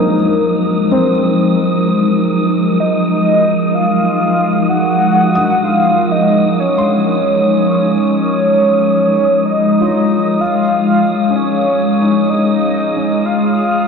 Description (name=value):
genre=ambient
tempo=63 BPM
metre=4/4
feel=straight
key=unclear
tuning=A4 = 440 Hz
part: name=warm velvety synth lead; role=melody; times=0.0-13.9 s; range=Bb4 to Gb5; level=-15 LUFS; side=right 1 dB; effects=chorus, tremolo, ping-pong delay
part: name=glassy FM pad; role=sustained chords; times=0.0-13.9 s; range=F3 to Eb5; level=-14 LUFS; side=left 1 dB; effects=ensemble chorus, built-in reverb
part: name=felt-muted upright piano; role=arpeggios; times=0.0-13.9 s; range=C4 to Eb6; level=-22 LUFS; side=left 1 dB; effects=ping-pong delay
part: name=wind-like tuned noise texture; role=texture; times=0.0-13.9 s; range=Eb6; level=-24 LUFS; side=right 1 dB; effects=built-in reverb
room=wet cathedral reverb, RT60 5.3 s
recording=dark, warm production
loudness=-11 LUFS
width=side -6 dB against mid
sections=0.0-13.9 A section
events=fade-out on felt piano 0.0-13.9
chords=0.0 Ebmadd9; 10.4 Dbmaj7